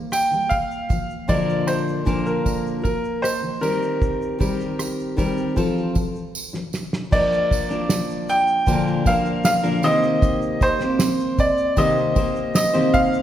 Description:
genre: acoustic pop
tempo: 77 BPM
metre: 4/4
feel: straight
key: Bb major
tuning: A4 = 440 Hz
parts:
  - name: fingerpicked steel-string acoustic guitar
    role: accompaniment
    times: 0.0-13.2 s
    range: Bb2 to C5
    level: -23 LUFS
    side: left 1 dB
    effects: none
  - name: bright upright piano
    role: melody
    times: 0.1-13.2 s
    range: Bb4 to G5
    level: -22 LUFS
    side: equal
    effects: none
  - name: cloth-damped thuddy drum kit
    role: drums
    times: 0.1-13.2 s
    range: crash cymbal, kick drum, rim click, shaker, snare drum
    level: -23 LUFS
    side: right 1 dB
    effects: none
  - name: tambourine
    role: percussion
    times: 0.1-13.1 s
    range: none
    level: -36 LUFS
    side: right 5 dB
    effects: none
room: moderate concert hall reverb, RT60 2.1 s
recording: recorded in a church or concert hall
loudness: -18 LUFS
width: side -11 dB against mid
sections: 0.0-7.1 A section; 7.1-13.2 B section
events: drum fill 6.3-7.1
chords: 0.0 Eb; 0.9 Bb; 3.6 Eb6; 5.6 F; 7.1 Bb; 9.8 Eb6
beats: 0.12 | 0.90 1.68 2.46 3.24 | 4.01 4.79 5.57 6.34 | 7.12 7.90 8.67 9.45 | 10.22 11.00 11.78 12.55

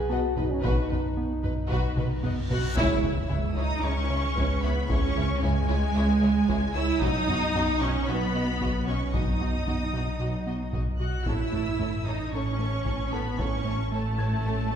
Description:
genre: cinematic, hybrid orchestral and electronic film score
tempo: 113 BPM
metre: 4/4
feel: straight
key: C# minor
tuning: A4 = 440 Hz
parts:
  - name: dark French horn section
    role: sustained chords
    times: 0.0-14.6 s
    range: F#3 to G#4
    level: -35 LUFS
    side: left 1 dB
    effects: none
  - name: pure sine sub bass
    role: bass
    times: 0.0-14.8 s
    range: A1 to C#2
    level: -33 LUFS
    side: left 1 dB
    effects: none
  - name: clear baby grand piano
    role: texture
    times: 0.0-14.8 s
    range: D#4 to G#6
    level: -40 LUFS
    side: left 2 dB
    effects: none
  - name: rich symphonic violin section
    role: melody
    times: 0.1-14.8 s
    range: B4 to F#6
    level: -35 LUFS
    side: left 3 dB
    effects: none
  - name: warm symphonic violin section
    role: second line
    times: 0.1-14.8 s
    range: E4 to D#5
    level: -37 LUFS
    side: left 3 dB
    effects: none
  - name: rich symphonic viola section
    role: accompaniment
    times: 0.1-14.8 s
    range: G#3 to B4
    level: -32 LUFS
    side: right 1 dB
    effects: none
  - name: rubbery square bass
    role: riff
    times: 0.1-14.8 s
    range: C#2 to B3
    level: -33 LUFS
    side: right 1 dB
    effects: none
  - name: dark studio double bass section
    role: bass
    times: 0.1-14.8 s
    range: A1 to C#2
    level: -32 LUFS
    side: right 2 dB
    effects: none
  - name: rich symphonic cello section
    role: bass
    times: 0.1-14.8 s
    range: B2 to F#4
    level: -33 LUFS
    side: right 4 dB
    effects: none
  - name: taiko ensemble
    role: drums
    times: 0.4-13.9 s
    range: none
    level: -32 LUFS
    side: left 1 dB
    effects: none
  - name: reverse cymbal and impact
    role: sound effects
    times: 2.3-4.9 s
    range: none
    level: -37 LUFS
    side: equal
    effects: none
room: wet scoring stage reverb, RT60 1.8 s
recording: heard from further back in the room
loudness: -24 LUFS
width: side -8 dB against mid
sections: 0.0-2.8 A section; 2.8-14.8 B section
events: drum fill 2.0-2.8; reverse cymbal 2.3-2.8; band accent 2.8-3.3; impact 2.8-4.9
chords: 0.0 B; 2.8 C#m; 7.0 B; 11.3 A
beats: 0.12 | 0.65 1.18 1.71 2.24 | 2.77 3.30 3.83 4.36 | 4.89 5.42 5.96 6.49 | 7.02 7.55 8.08 8.61 | 9.14 9.67 10.20 10.73 | 11.27 11.80 12.33 12.86 | 13.39 13.92 14.45

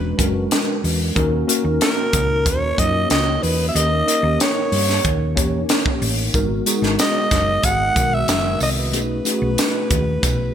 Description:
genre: polished 1980s jazz-funk pop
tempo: 93 BPM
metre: 4/4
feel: straight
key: unclear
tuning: A4 = 440 Hz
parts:
  - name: growling alto saxophone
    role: melody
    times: 0.0-10.5 s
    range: A#4 to F#5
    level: -21 LUFS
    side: equal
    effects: none
  - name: mellow tine electric piano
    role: accompaniment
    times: 0.0-10.5 s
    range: D#3 to C#5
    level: -23 LUFS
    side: left 1 dB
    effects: medium stereo tremolo, ensemble chorus
  - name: hollow-body short-scale fingered electric bass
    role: bass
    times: 0.0-10.5 s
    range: E1 to G2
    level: -22 LUFS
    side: equal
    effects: none
  - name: crisp fusion drum kit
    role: drums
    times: 0.2-10.4 s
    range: hi-hat, kick drum, snare drum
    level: -20 LUFS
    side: equal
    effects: gated reverb
  - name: tambourine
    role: percussion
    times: 6.3-10.4 s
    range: none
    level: -32 LUFS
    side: right 9 dB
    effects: none
room: light reverb, small room ambience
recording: bright 1980s-style digital production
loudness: -16 LUFS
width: side -9 dB against mid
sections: 0.0-10.5 A section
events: tine electric piano fill 10.2-10.5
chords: 0.0 E13; 1.2 D#m7; 3.8 D#7; 6.3 G#m9; 8.9 B13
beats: 0.51 | 1.16 1.81 2.46 3.10 | 3.75 4.40 5.05 5.69 | 6.34 6.99 7.64 8.29 | 8.93 9.58 10.23

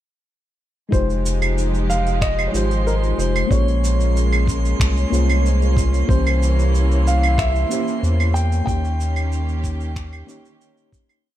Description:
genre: sunset chillout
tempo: 93 BPM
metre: 4/4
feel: straight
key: F minor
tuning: A4 = 440 Hz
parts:
  - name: dark baby grand piano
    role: melody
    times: 0.9-10.6 s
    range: Bb4 to G5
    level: -26 LUFS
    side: equal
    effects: ping-pong delay
  - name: mellow FM electric piano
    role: accompaniment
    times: 0.9-11.3 s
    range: E3 to Db5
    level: -26 LUFS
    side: moving between left 5 dB and right 3 dB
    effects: chorus, auto-pan, digital delay
  - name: dark studio string section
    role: sustained chords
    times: 0.9-11.2 s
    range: Eb3 to G4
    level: -28 LUFS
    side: right 1 dB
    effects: none
  - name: warm sub bass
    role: bass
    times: 0.9-10.2 s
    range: F1 to E2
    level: -18 LUFS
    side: equal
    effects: tube saturation
  - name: electronic kick drum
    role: drums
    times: 0.9-11.1 s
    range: none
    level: -21 LUFS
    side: equal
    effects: none
  - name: electronic shaker, claves and finger snaps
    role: drums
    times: 0.9-11.2 s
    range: none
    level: -28 LUFS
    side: right 3 dB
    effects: none
  - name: drifting glass-harmonics texture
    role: texture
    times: 1.7-11.3 s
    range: C6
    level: -34 LUFS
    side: right 6 dB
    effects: chorus, built-in reverb
room: light reverb, digital ambience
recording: dark, warm production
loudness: -16 LUFS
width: side -13 dB against mid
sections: 0.9-11.3 groove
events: fade-out 7.8-11.3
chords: 0.9 Fm9; 3.5 Bbm9; 6.1 C7b9; 8.7 Eb7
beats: | 0.93 1.57 2.22 2.87 | 3.51 4.16 4.80 5.45 | 6.09 6.74 7.38 8.03 | 8.67 9.32 9.96 10.61

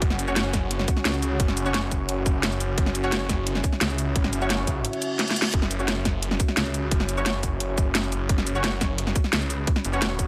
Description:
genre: dark technical drum and bass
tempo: 174 BPM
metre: 4/4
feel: straight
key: unclear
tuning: A4 = 440 Hz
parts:
  - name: deep dark ambient pad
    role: sustained chords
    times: 0.0-10.3 s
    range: C#4 to E5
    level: -34 LUFS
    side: equal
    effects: chorus, built-in reverb, sidechain pumping
  - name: orchestra-hit-like synth stab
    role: stabs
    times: 0.0-10.3 s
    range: C#4 to C#5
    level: -35 LUFS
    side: equal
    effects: built-in reverb, delay
  - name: snarling distorted saw bass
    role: bass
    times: 0.0-10.3 s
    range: E1 to C#2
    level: -30 LUFS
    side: equal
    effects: distortion, overdrive
  - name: drum and bass drum kit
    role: drums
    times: 0.0-10.3 s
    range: cabasa, hi-hat, snare drum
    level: -28 LUFS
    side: equal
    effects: overdrive, small room ambience
  - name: electronic kick drum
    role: drums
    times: 0.0-10.3 s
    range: none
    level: -27 LUFS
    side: equal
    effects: overdrive, small room ambience
  - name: reverse cymbal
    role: sound effects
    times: 5.0-5.5 s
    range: none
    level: -34 LUFS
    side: equal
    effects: none
room: light reverb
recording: none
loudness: -25 LUFS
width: mono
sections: 0.0-10.3 A section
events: reverse cymbal 5.0-5.5; drum fill 5.2-5.5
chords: 0.0 F#5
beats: | 0.02 0.36 0.71 1.05 | 1.40 1.74 2.09 2.43 | 2.78 3.12 3.47 3.81 | 4.16 4.50 4.85 5.19 | 5.54 5.88 6.22 6.57 | 6.92 7.26 7.60 7.95 | 8.29 8.64 8.98 9.33 | 9.67 10.02

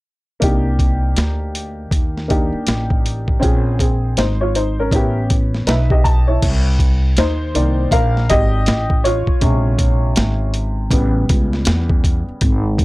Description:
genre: hip hop, jazz-hop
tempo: 80 BPM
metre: 4/4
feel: swing 63% on 16ths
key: unclear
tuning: A4 = 440 Hz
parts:
  - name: warm upright piano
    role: accompaniment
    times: 0.4-12.4 s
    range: C3 to A5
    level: -20 LUFS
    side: equal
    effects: none
  - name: upright bass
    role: bass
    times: 0.4-12.8 s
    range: Ab1 to E2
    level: -18 LUFS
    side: equal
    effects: transformer saturation
  - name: boom bap sampler-style drum kit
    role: drums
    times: 0.4-12.8 s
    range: crash cymbal, hi-hat, kick drum, snare drum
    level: -17 LUFS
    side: equal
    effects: none
room: little or no reverb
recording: dry, gritty hardware recording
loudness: -14 LUFS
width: side -20 dB against mid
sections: 0.4-6.4 A section; 6.4-12.8 B section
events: upright piano fill 5.3-6.4; upright piano solo 6.4-12.8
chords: 0.4 Cm9; 3.4 Bbm7; 4.9 A9; 6.4 Cm9; 9.4 Bbm7; 10.9 A9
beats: | 0.42 1.17 1.92 2.67 | 3.42 4.17 4.92 5.67 | 6.42 7.17 7.92 8.67 | 9.42 10.17 10.92 11.67 | 12.42

